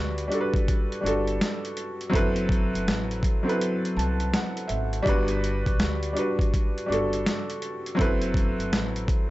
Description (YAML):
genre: lo-fi hip hop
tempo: 82 BPM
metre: 4/4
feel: swing 62% on 16ths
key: G major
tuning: A4 = 440 Hz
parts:
  - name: felt-muted upright piano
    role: accompaniment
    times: 0.0-9.3 s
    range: F#3 to A5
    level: -26 LUFS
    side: equal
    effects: cassette tape
  - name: upright bass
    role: bass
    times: 0.0-9.1 s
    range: F#1 to D2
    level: -30 LUFS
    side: equal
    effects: none
  - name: boom bap sampler-style drum kit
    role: drums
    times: 0.2-9.3 s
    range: hi-hat, kick drum, snare drum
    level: -26 LUFS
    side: equal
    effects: overdrive
room: small room ambience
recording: dry, gritty hardware recording, nothing above 7.9 kHz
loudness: -23 LUFS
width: side -17 dB against mid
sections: 0.0-9.3 A section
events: felt piano fill 3.6-5.1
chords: 0.0 Gmaj7; 2.1 Am69/F#; 5.1 Gmaj7; 8.0 D13/F# (rootless)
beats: 0.67 1.41 | 2.14 2.87 3.60 4.33 | 5.06 5.79 6.53 7.26 | 7.99 8.72